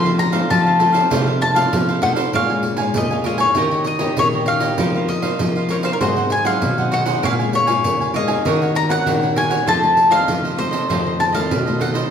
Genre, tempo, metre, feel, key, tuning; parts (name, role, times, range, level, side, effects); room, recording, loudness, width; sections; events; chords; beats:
samba and choro; 98 BPM; 4/4; straight; A4 = 440 Hz
mandolin; melody; 0.0-11.9 s; Bb4 to C6; -19 LUFS; left 2 dB
cavaquinho; accompaniment; 0.0-12.1 s; Eb4 to Ab5; -25 LUFS; right 5 dB
nylon-string guitar; accompaniment; 0.0-12.1 s; F2 to Bb4; -25 LUFS; left 3 dB
nylon-string guitar; bass; 0.0-12.0 s; Bb2 to Ab3; -22 LUFS; equal
pandeiro; percussion; 0.1-12.1 s; -23 LUFS; right 3 dB
wet recital hall reverb, RT60 1.6 s; recorded in a church or concert hall; -15 LUFS; side -8 dB against mid
0.0-2.3 A section; 2.3-12.1 B section
mandolin solo 0.0-2.3
0.0 F; 2.3 Bbm7; 3.6 Eb7; 4.8 F7sus4; 6.0 Ab7; 7.2 Bbm7; 8.5 Ebm7; 9.7 F7
0.51 1.12 1.74 | 2.35 2.96 3.57 4.18 | 4.79 5.40 6.01 6.62 | 7.23 7.84 8.45 9.06 | 9.67 10.28 10.89 11.51